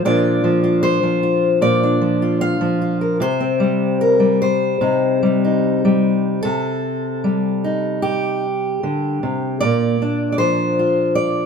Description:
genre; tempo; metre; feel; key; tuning
folk, solo fingerstyle acoustic guitar; 76 BPM; 4/4; rubato; C dorian; A4 = 441 Hz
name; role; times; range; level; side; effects
fingerpicked steel-string acoustic guitar; solo; 0.0-11.5 s; Bb2 to F5; -16 LUFS; left 1 dB; none
room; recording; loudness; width
moderate large studio reverb, RT60 1.0 s; minimal, uncompressed stereo recording; -16 LUFS; side -6 dB against mid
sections
0.0-6.4 A section; 6.4-11.5 A section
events
none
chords
0.0 Bb; 3.2 Cm; 9.6 Bb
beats
| 0.04 0.83 1.62 2.42 | 3.21 4.00 4.81 5.63 | 6.44 7.24 8.03 8.82 | 9.61 10.39 11.17

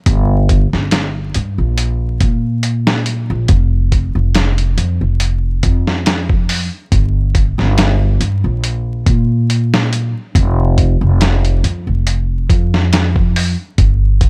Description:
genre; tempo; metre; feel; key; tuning
trip hop; 70 BPM; 4/4; swing 54% on 16ths; unclear; A4 = 441 Hz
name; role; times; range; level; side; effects
upright bass; bass; 0.1-14.3 s; F1 to Bb2; -16 LUFS; equal; none
dusty soul sampler-style drum kit; drums; 0.1-14.3 s; hi-hat, kick drum, snare drum; -18 LUFS; equal; overdrive, vintage 12-bit sampler grit
room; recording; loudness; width
little or no reverb; vinyl crackle; -15 LUFS; mono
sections
0.0-14.3 A section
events
none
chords
none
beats
| 0.07 0.92 1.78 2.64 | 3.49 4.35 5.21 6.07 | 6.92 7.78 8.64 9.49 | 10.35 11.21 12.06 12.92 | 13.78

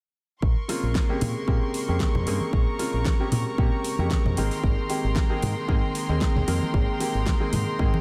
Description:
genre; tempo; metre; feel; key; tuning
nu-disco, nu disco; 114 BPM; 4/4; swing 54% on 16ths; Bb dorian; A4 = 439 Hz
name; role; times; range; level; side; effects
rich chamber string section; sustained chords; 0.4-8.0 s; Ab3 to Db6; -36 LUFS; equal; sidechain pumping
fingered electric bass with an envelope filter; bass; 0.4-7.9 s; Ab1 to Bb2; -29 LUFS; equal; none
electronic kick drum; drums; 0.4-7.9 s; none; -26 LUFS; equal; studio reverb
clear concert grand piano; accompaniment; 0.7-8.0 s; Db3 to Bb4; -31 LUFS; equal; analog delay
pop drum kit; drums; 0.7-7.6 s; hi-hat, snare drum; -36 LUFS; equal; studio reverb
congas; percussion; 1.2-8.0 s; none; -35 LUFS; equal; none
room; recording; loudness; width
moderate cathedral reverb, RT60 5.3 s; dreamy mix soaked in reverb; -25 LUFS; mono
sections
0.4-8.0 A section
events
none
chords
0.4 Bbm9; 4.4 Abmaj9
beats
| 0.43 0.95 1.48 2.00 | 2.53 3.06 3.58 4.11 | 4.64 5.16 5.69 6.22 | 6.74 7.27 7.79

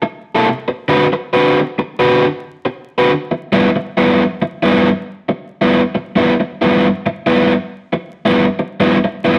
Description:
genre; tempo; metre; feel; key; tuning
blues; 91 BPM; 4/4; swing 64% on 8ths; G mixolydian; A4 = 439 Hz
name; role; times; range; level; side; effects
overdriven electric guitar; solo; 0.0-9.4 s; G2 to B4; -15 LUFS; equal; none
room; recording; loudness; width
moderate studio reverb, RT60 0.8 s; vinyl crackle; -15 LUFS; mono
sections
0.0-3.1 A section; 3.1-9.4 B section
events
none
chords
0.5 D6; 3.1 G6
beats
| 0.47 1.13 1.79 2.45 | 3.11 3.77 4.42 5.08 | 5.74 6.40 7.06 7.72 | 8.38 9.04

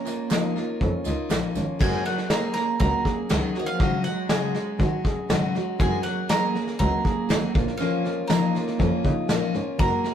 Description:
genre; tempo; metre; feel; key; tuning
indie folk with a building arrangement; 120 BPM; 4/4; straight; F# major; A4 = 440 Hz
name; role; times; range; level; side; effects
bowl-back mandolin; melody; 0.0-10.1 s; D#5 to A#5; -30 LUFS; right 3 dB; none
dark cello; second line; 0.0-10.1 s; D#3 to A#3; -32 LUFS; right 8 dB; none
picked steel-string acoustic guitar; accompaniment; 0.0-10.1 s; G#2 to G#4; -28 LUFS; left 6 dB; none
dark upright piano; arpeggios; 0.0-10.1 s; C#4 to G#4; -32 LUFS; right 2 dB; none
vintage brush drum kit; drums; 0.1-10.1 s; crash cymbal, kick drum, snare drum; -26 LUFS; equal; none
group handclap; percussion; 0.1-1.4 s; none; -40 LUFS; right 4 dB; none
tambourine; percussion; 0.1-9.4 s; none; -43 LUFS; right 6 dB; none
warm double bass; bass; 0.8-9.9 s; F#1 to C#3; -28 LUFS; equal; none
room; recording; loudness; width
light reverb; rough rehearsal-room recording, warm saturation; -22 LUFS; side -9 dB against mid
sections
0.0-1.8 A section; 1.8-10.1 B section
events
none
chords
0.0 A#m; 1.8 F#add9; 3.8 C#sus4/G#; 5.8 F#add9; 7.5 A#m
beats
0.31 0.81 1.31 | 1.81 2.31 2.81 3.31 | 3.80 4.30 4.80 5.30 | 5.80 6.30 6.80 7.30 | 7.80 8.30 8.80 9.30 | 9.80

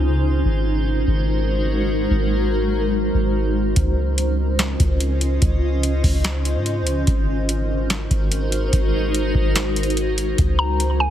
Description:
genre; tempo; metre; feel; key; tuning
hip hop, atmospheric cloud-rap; 145 BPM; 4/4; half-time; Db major; A4 = 439 Hz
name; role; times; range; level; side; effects
granular cloud pad; sustained chords; 0.0-11.1 s; Db3 to Eb5; -22 LUFS; equal; built-in reverb
soft 808-style bass; bass; 0.0-11.1 s; Ab1 to Ab2; -21 LUFS; equal; none
booming analog drum machine; drums; 3.8-10.9 s; hi-hat, kick drum, snare drum; -21 LUFS; equal; none
mallet-like synth pluck; melody; 10.6-11.1 s; Ab5 to Bb5; -21 LUFS; equal; chorus, low-pass filter, tape echo
room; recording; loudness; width
digital ambience; heavily compressed radio sound; -18 LUFS; side -11 dB against mid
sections
0.0-10.4 A section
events
none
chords
0.5 Ab7; 3.8 Dbmaj7; 7.1 Ab7; 10.4 Dbmaj7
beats
0.04 | 0.45 0.87 1.28 1.69 | 2.11 2.52 2.94 3.35 | 3.76 4.18 4.59 5.00 | 5.42 5.83 6.25 6.66 | 7.07 7.49 7.90 8.31 | 8.73 9.14 9.56 9.97 | 10.38 10.80

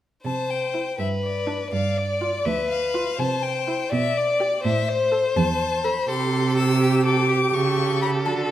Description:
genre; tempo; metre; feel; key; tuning
quick classical-period movement for string quartet; 82 BPM (dotted quarters); 6/8; rubato; C major; A4 = 439 Hz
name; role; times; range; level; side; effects
rich violin; second line; 0.2-8.5 s; G4 to D5; -26 LUFS; left 2 dB; none
rich cello; bass; 0.2-8.5 s; D2 to D3; -24 LUFS; right 3 dB; none
rich violin; melody; 0.3-8.3 s; C5 to E6; -26 LUFS; left 6 dB; none
warm viola; accompaniment; 0.7-8.5 s; D4 to A4; -27 LUFS; right 3 dB; none
room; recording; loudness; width
wet recital hall reverb, RT60 1.3 s; none; -20 LUFS; side -12 dB against mid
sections
0.2-8.5 A section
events
none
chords
0.2 C; 1.0 G; 1.7 G7; 3.2 C; 3.9 G/B; 4.6 Am; 6.1 Am7/C; 7.5 A7/C#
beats
| 0.24 0.98 | 1.72 2.46 | 3.19 3.92 | 4.64 5.37 | 6.09 6.81 | 7.53 8.26

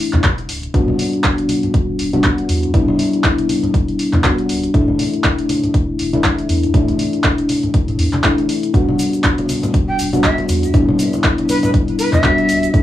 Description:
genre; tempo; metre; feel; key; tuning
deep house; 120 BPM; 4/4; swing 57% on 16ths; E minor; A4 = 436 Hz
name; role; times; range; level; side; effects
mellow FM electric piano; stabs; 0.0-12.8 s; E3 to F#4; -17 LUFS; left 2 dB; chorus, sidechain pumping, analog delay
sub bass with octave; bass; 0.1-12.8 s; D1 to E2; -21 LUFS; right 1 dB; sidechain pumping
punchy analog drum machine; drums; 0.1-12.8 s; handclaps, hi-hat; -21 LUFS; equal; overdrive
congas; percussion; 0.1-12.8 s; none; -24 LUFS; left 2 dB; none
electronic kick drum; drums; 0.2-12.8 s; none; -17 LUFS; equal; overdrive
egg shaker; percussion; 8.7-12.8 s; none; -34 LUFS; equal; none
breathy bright jazz flute; melody; 9.9-12.8 s; B4 to G5; -20 LUFS; right 1 dB; tape echo
room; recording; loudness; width
light reverb; home recording on cassette, small room ambience; -13 LUFS; side -13 dB against mid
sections
0.0-12.8 A section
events
none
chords
0.0 Dsus2/E; 0.7 Em9; 4.7 Dsus2/E; 8.7 Em9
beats
0.24 | 0.74 1.24 1.74 2.24 | 2.74 3.24 3.74 4.24 | 4.74 5.24 5.74 6.24 | 6.74 7.24 7.74 8.24 | 8.74 9.24 9.74 10.24 | 10.74 11.24 11.74 12.24 | 12.74

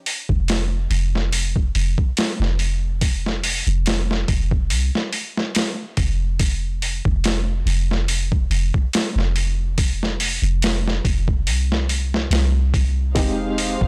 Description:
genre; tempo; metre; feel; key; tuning
trip hop; 71 BPM; 4/4; swing 55% on 16ths; F minor; A4 = 440 Hz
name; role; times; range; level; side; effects
boom bap sampler-style drum kit; drums; 0.1-13.9 s; hi-hat, kick drum, snare drum; -24 LUFS; equal; overdrive
soft 808-style bass; bass; 0.3-13.9 s; F1 to C2; -23 LUFS; equal; tube saturation
dark upright piano; accompaniment; 13.1-13.9 s; Ab3 to G4; -25 LUFS; equal; tremolo
dark studio string section; sustained chords; 13.2-13.9 s; Ab3 to F5; -31 LUFS; equal; none
room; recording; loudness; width
small room ambience; blown-out, overdriven recording, overdrive; -21 LUFS; mono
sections
0.0-13.9 A section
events
none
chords
0.0 F5; 13.2 Fm7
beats
0.48 1.33 2.17 | 3.02 3.86 4.71 5.55 | 6.40 7.24 8.09 8.93 | 9.78 10.62 11.47 12.31 | 13.16

